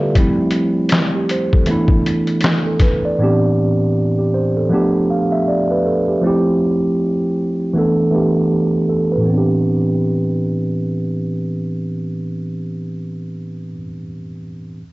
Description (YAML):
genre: lo-fi hip hop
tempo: 79 BPM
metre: 4/4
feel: swing 59% on 16ths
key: A minor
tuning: A4 = 440 Hz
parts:
  - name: mellow tine electric piano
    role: accompaniment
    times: 0.0-14.8 s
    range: A2 to F5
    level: -16 LUFS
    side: right 1 dB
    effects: cassette tape, low-pass filter
  - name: trip hop sampler-style drum kit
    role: drums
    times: 0.2-3.0 s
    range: hi-hat, kick drum, snare drum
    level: -16 LUFS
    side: left 1 dB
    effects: none
room: moderate plate reverb, RT60 2.0 s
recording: cassette tape, nothing above 7.9 kHz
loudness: -15 LUFS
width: side -20 dB against mid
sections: 0.0-9.3 A section; 9.3-12.3 B section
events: filter sweep on tine electric piano 0.0-9.3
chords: 0.1 Fmaj9; 1.7 E7sus4; 3.2 Am11; 4.7 G7; 6.2 Fmaj9; 7.7 E7sus4; 9.3 Am11